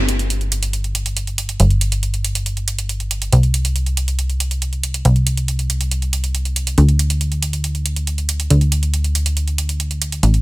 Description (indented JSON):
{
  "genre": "uplifting trance",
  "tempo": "139 BPM",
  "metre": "4/4",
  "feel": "straight",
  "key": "unclear",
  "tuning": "A4 = 439 Hz",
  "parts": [
    { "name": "plucky analog bass", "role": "bass", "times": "0.0-10.4 s", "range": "G1 to D2", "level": "-17 LUFS", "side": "equal", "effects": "none" },
    { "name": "electronic hi-hat", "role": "drums", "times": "0.1-10.4 s", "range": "none", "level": "-22 LUFS", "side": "right 2 dB", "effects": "studio ambience" }
  ],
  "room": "little or no reverb",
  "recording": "none",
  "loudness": "-16 LUFS",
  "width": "side -20 dB against mid",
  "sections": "0.0-10.4 A section",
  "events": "none",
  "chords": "none"
}